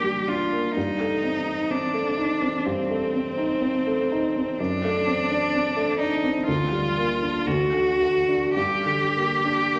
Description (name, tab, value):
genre	classical, romantic duo for cello and grand piano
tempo	50-66 BPM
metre	4/4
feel	rubato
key	G minor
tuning	A4 = 440 Hz
part	rich cello	melody	0.0-9.8 s	C4 to G4	-26 LUFS	equal	none
part	dark baby grand piano	accompaniment	0.0-9.8 s	D2 to Eb4	-27 LUFS	equal	none
room	wet scoring stage reverb, RT60 1.5 s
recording	none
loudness	-24 LUFS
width	mono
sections	0.0-9.8 A section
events	none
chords	0.0 Gm; 0.8 Am7b5/G; 4.6 D7/F#; 6.5 Gm/D; 7.5 D; 8.6 Gm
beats	| 0.76 1.70 2.66 3.62 | 4.59 5.53 6.46 7.46 | 8.56 9.74